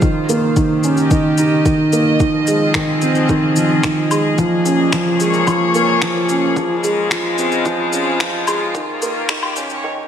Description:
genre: piano and strings electronica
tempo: 110 BPM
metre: 4/4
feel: straight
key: unclear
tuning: A4 = 438 Hz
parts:
  - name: dark studio string section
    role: sustained chords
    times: 0.0-9.8 s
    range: Bb2 to Eb5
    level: -20 LUFS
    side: left 2 dB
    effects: sidechain pumping, low-pass filter
  - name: felt-muted upright piano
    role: riff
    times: 0.0-10.1 s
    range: Eb3 to Eb4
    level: -16 LUFS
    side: right 1 dB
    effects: tape echo
  - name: electronic kick drum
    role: drums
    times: 0.0-9.4 s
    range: none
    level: -19 LUFS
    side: left 1 dB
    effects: overdrive, studio reverb
  - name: electronic shaker, finger snaps and woodblock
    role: drums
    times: 0.0-9.8 s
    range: none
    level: -24 LUFS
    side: left 3 dB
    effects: overdrive, high-pass filter on perc, studio reverb, high-pass filter on snare
room: wet concert hall reverb, RT60 2.1 s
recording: high-pass filter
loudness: -14 LUFS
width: side -8 dB against mid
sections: 0.0-10.1 A section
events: build-up 0.0-10.1; filter sweep 0.0-10.1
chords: 0.0 Eb7; 2.2 Fm7; 4.4 Bbm7; 6.6 Dbmaj7; 8.7 Eb7

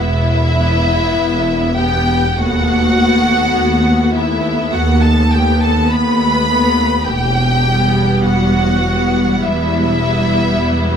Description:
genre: classical, slow romantic movement for string orchestra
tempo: 51 BPM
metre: 4/4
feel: rubato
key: E minor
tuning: A4 = 440 Hz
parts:
  - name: warm symphonic violin section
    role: melody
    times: 0.0-11.0 s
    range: E5 to B5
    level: -18 LUFS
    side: equal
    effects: none
  - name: warm symphonic violin section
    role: second line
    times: 0.0-11.0 s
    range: E4 to B4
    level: -20 LUFS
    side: left 2 dB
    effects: none
  - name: clear symphonic viola section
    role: accompaniment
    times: 0.0-11.0 s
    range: G3 to B3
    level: -19 LUFS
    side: equal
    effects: none
  - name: rich symphonic cello section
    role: bass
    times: 0.0-11.0 s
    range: D#2 to E2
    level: -18 LUFS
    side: equal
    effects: none
  - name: rich symphonic double bass section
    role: bass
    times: 0.0-11.0 s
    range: E1 to D#2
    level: -18 LUFS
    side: right 1 dB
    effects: none
room: moderate stone room reverb, RT60 1.2 s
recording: none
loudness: -12 LUFS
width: side -7 dB against mid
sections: 0.0-11.0 A section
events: none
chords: 0.0 Em; 2.4 B7/D#; 7.1 Em

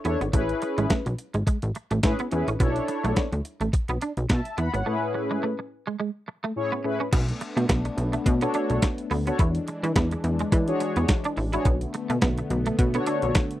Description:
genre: early-eighties boogie funk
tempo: 106 BPM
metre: 4/4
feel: swing 56% on 16ths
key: B dorian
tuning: A4 = 440 Hz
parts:
  - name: mellow synth brass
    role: accompaniment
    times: 0.0-13.4 s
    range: A2 to B5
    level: -28 LUFS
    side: left 2 dB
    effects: chorus
  - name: clean 12-bit digital drum machine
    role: drums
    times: 0.0-13.6 s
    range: crash cymbal, hi-hat, kick drum, snare drum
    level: -24 LUFS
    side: equal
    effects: none
  - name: semi-hollow electric guitar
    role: riff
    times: 0.1-13.4 s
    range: G#3 to E4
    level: -30 LUFS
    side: right 3 dB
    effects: ensemble chorus
  - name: plucky analog bass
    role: bass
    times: 0.1-13.3 s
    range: G#1 to E3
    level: -26 LUFS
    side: equal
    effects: none
  - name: brassy analog pad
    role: sustained chords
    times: 7.1-13.6 s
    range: D3 to D4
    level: -31 LUFS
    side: left 2 dB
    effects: chorus
room: little or no reverb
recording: dry, close 1970s-style studio recording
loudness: -23 LUFS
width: side -14 dB against mid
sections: 0.0-7.1 A section; 7.1-13.6 B section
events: break 4.9-7.1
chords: 0.3 Amaj9; 2.6 Bm11; 4.9 Amaj9; 7.1 Bm9; 9.4 E13; 11.7 Bm9

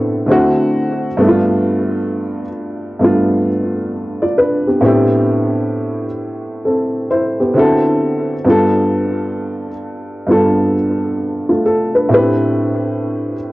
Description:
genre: hip hop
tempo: 66 BPM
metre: 4/4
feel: swing 64% on 16ths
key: unclear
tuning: A4 = 441 Hz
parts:
  - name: dark upright piano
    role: solo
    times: 0.0-13.5 s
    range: G2 to D5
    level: -13 LUFS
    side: equal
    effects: cassette tape, analog delay
room: moderate spring reverb, RT60 2.0 s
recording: home recording on cassette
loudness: -13 LUFS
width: side -19 dB against mid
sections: 0.0-13.5 A section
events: none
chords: 0.3 D9; 1.2 G9; 4.8 Am11; 7.6 D9; 8.5 G9; 12.1 Am11

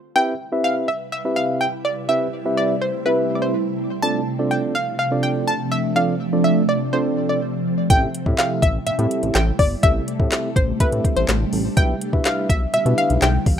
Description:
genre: dance-pop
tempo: 124 BPM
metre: 4/4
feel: straight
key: C major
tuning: A4 = 440 Hz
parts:
  - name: analog pluck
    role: melody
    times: 0.2-13.6 s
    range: B4 to A5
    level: -22 LUFS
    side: equal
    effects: chorus, tape echo
  - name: mellow tine electric piano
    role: accompaniment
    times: 0.2-13.3 s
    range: C4 to E5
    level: -23 LUFS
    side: right 1 dB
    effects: sidechain pumping
  - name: ethereal airy pad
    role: sustained chords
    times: 1.0-13.6 s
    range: C3 to B4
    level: -24 LUFS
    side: right 1 dB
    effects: ensemble chorus, built-in reverb, phaser, sidechain pumping
  - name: chorused synth bass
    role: bass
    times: 7.9-13.6 s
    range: G1 to B2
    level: -22 LUFS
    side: equal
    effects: sidechain pumping
  - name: smooth R&B drum kit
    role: drums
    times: 7.9-13.6 s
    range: handclaps, hi-hat, kick drum, snare drum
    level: -19 LUFS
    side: equal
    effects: none
room: little or no reverb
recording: rough home demo mix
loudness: -18 LUFS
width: side -8 dB against mid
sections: 0.2-13.6 A section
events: stop 0.0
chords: 0.2 Cmaj7; 4.0 Dm7; 7.9 Am7; 11.8 Em7

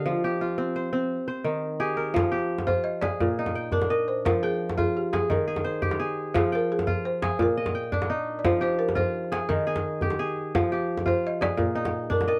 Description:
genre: west african traditional, West African string and xylophone music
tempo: 115 BPM (dotted quarters)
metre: 12/8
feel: straight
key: F dorian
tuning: A4 = 438 Hz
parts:
  - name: kora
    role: arpeggios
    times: 0.0-12.4 s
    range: Bb2 to G5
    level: -29 LUFS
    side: equal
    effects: none
  - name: balafon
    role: melody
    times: 0.1-12.4 s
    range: F4 to Eb5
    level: -30 LUFS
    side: equal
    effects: none
  - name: djembe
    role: percussion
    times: 2.2-12.3 s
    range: none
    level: -32 LUFS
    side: equal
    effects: none
room: light reverb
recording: dark, warm production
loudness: -26 LUFS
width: mono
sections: 0.0-2.2 A section; 2.2-12.4 B section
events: none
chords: 0.1 F5; 1.1 Eb; 2.2 Fm; 3.2 Bb; 4.3 Fm; 5.3 Eb; 6.3 Fm; 7.4 Bb; 8.4 Fm; 9.5 Eb; 10.5 Fm; 11.6 Bb

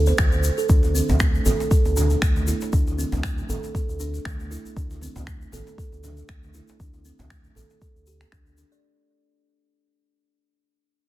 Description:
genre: afro house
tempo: 118 BPM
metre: 4/4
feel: swing 55% on 16ths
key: unclear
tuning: A4 = 439 Hz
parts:
  - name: round analog bass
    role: bass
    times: 0.0-8.6 s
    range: A1 to D2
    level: -24 LUFS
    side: equal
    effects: sidechain pumping
  - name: kalimba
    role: arpeggios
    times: 0.1-8.8 s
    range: A3 to D5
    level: -28 LUFS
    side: right 4 dB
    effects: sidechain pumping, low-pass filter, ping-pong delay
  - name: congas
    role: percussion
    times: 0.1-8.7 s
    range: none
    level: -34 LUFS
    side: right 2 dB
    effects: none
  - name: djembe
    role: percussion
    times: 0.1-8.6 s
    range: none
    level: -30 LUFS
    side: left 1 dB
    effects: none
  - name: egg shaker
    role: percussion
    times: 0.1-8.8 s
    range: none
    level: -35 LUFS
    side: left 5 dB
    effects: none
  - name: electronic finger snaps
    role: drums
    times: 0.2-8.4 s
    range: none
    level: -29 LUFS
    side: equal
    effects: soft clipping on snare
  - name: electronic kick drum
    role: drums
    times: 0.2-8.4 s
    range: none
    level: -21 LUFS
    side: equal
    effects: none
room: light reverb, small room ambience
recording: dense, heavily limited modern master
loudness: -20 LUFS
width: side -16 dB against mid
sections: 0.0-8.8 A section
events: fade-out 0.0-8.8; filter sweep on kalimba 0.0-8.8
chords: 0.0 D7(no3); 0.7 N.C.

